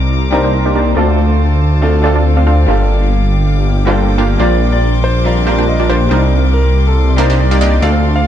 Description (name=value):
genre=future bass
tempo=140 BPM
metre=4/4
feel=swing 54% on 16ths, half-time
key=unclear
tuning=A4 = 442 Hz
part: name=clear grand piano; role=accompaniment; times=0.0-8.3 s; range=G3 to Bb4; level=-20 LUFS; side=equal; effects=tape echo
part: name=rich chamber string section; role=sustained chords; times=0.0-8.3 s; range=Bb3 to D6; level=-24 LUFS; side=left 2 dB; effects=low-pass filter
part: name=wide detuned saw bass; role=bass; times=0.0-8.3 s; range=G1 to D2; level=-12 LUFS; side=equal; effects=chorus
part: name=supersaw stab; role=riff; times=0.3-7.9 s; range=Bb3 to F5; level=-18 LUFS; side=right 1 dB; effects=low-pass filter, tape echo
part: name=warm concert grand piano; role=melody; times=4.4-8.3 s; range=A4 to F5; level=-19 LUFS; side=left 1 dB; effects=tape echo
room=light reverb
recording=none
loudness=-10 LUFS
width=side -10 dB against mid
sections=0.0-8.3 A section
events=filter sweep on supersaw synth 0.0-8.3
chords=0.0 Cm9; 1.0 Dm7; 2.7 Gm7; 4.4 Bb69; 6.1 Cm9